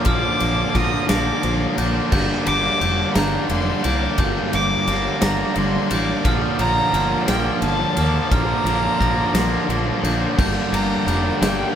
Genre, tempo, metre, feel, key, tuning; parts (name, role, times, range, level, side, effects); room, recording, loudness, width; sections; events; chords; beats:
post-rock; 58 BPM (dotted quarters); 6/8; straight; G minor; A4 = 438 Hz
rich violin; melody; 0.0-11.8 s; G5 to Eb6; -24 LUFS; equal
glockenspiel with hard plastic mallets; arpeggios; 0.0-11.8 s; F6 to Bb6; -30 LUFS; left 1 dB; tape echo
crunchy overdriven guitar; riff; 0.0-11.8 s; G2 to D4; -24 LUFS; right 4 dB
tight distorted guitar; riff; 0.0-11.8 s; G2 to D4; -25 LUFS; left 6 dB; distortion
huge arena drum kit; drums; 0.0-11.6 s; crash cymbal, kick drum, ride cymbal, snare drum; -24 LUFS; equal
fingered electric bass; bass; 0.1-11.6 s; F1 to Eb2; -24 LUFS; equal
ethereal airy pad; sustained chords; 11.1-11.8 s; D4 to G5; -32 LUFS; left 1 dB
moderate studio reverb, RT60 0.5 s; band playing live in one room; -17 LUFS; side -9 dB against mid
0.0-11.8 A section
0.0 Bb; 2.1 Gm; 6.2 Bb; 10.4 Gm
| 0.07 1.10 | 2.13 3.16 | 4.19 5.22 | 6.25 7.28 | 8.32 9.35 | 10.39 11.42